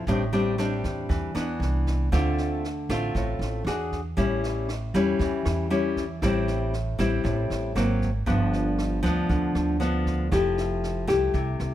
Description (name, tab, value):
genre	bossa nova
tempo	117 BPM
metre	4/4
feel	straight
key	A minor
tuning	A4 = 441 Hz
part	nylon-string guitar	accompaniment	0.0-11.7 s	G2 to G#4	-25 LUFS	left 1 dB	none
part	upright bass	bass	0.0-11.7 s	F1 to E2	-28 LUFS	right 1 dB	none
part	jazz brush drum kit	drums	0.1-11.7 s	kick drum, rim click, snare drum	-33 LUFS	right 1 dB	none
room	light reverb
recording	none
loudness	-23 LUFS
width	side -12 dB against mid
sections	0.0-2.1 A section; 2.1-11.7 B section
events	none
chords	0.1 Am11; 1.6 Cmaj9; 2.1 Dm7; 3.7 E9; 4.2 A7; 6.2 Am7; 7.8 G#9; 8.3 G7; 10.3 Fmaj9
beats	| 0.07 0.58 1.10 1.61 | 2.12 2.63 3.15 3.66 | 4.17 4.68 5.20 5.71 | 6.22 6.73 7.24 7.76 | 8.27 8.78 9.29 9.80 | 10.31 10.83 11.34